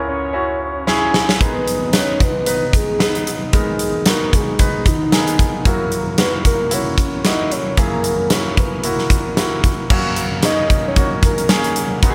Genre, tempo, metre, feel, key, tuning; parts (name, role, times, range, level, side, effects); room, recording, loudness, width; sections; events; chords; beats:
piano-driven pop; 113 BPM; 4/4; swing 56% on 16ths; A4 = 441 Hz
soft octave-layered synth lead; melody; 0.0-11.7 s; D#4 to D#5; -25 LUFS; equal; chorus, phaser
clear concert grand piano; accompaniment; 0.0-12.1 s; C#2 to B4; -24 LUFS; equal
huge arena drum kit; drums; 0.9-12.1 s; crash cymbal, hi-hat, kick drum, snare drum; -19 LUFS; equal
glassy FM pad; sustained chords; 11.0-12.1 s; D#3 to C#5; -32 LUFS; equal
light reverb; -17 LUFS; mono
0.0-9.9 A section; 9.9-12.1 B section
drum fill 0.9-1.4
0.0 C#m; 1.4 G#m; 5.7 F#7; 9.9 F#
0.34 0.87 | 1.41 1.94 2.47 3.00 | 3.53 4.06 4.59 5.13 | 5.66 6.19 6.72 7.25 | 7.78 8.31 8.84 9.38 | 9.90 10.44 10.97 11.50 | 12.03